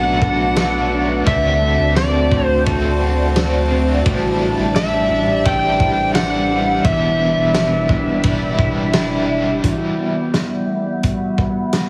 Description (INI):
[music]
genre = dream pop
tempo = 86 BPM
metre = 4/4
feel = straight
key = E minor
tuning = A4 = 435 Hz
[part]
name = overdriven slide guitar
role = melody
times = 0.0-8.9 s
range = D5 to G5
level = -21 LUFS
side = equal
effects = digital delay
[part]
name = crunchy overdriven guitar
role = accompaniment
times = 0.0-10.2 s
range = E2 to F#4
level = -25 LUFS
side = equal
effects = tremolo, lush chorus
[part]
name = ethereal airy pad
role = sustained chords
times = 0.0-11.9 s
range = G3 to B5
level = -27 LUFS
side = equal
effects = ensemble chorus, built-in reverb, phaser, low-pass filter
[part]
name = clean electric guitar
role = arpeggios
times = 0.0-11.9 s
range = A2 to B4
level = -24 LUFS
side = equal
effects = subtle chorus, low-pass filter, digital delay
[part]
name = round analog bass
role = bass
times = 0.0-9.6 s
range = E1 to D2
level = -25 LUFS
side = equal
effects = none
[part]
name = drifting glass-harmonics texture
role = texture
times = 0.0-9.9 s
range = B4 to A5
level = -34 LUFS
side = equal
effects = chorus, built-in reverb, digital delay
[part]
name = loose indie drum kit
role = drums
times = 0.2-11.9 s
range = hi-hat, kick drum, ride cymbal, snare drum, tambourine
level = -23 LUFS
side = equal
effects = none
[sound]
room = wet recital hall reverb, RT60 1.8 s, studio ambience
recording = heavily compressed radio sound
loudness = -17 LUFS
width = mono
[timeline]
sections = 0.0-9.6 A section; 9.6-11.9 B section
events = filter sweep 9.6-11.9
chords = 0.0 Bm7; 1.3 D7; 4.1 A7sus4; 6.8 Em7; 9.6 Emadd9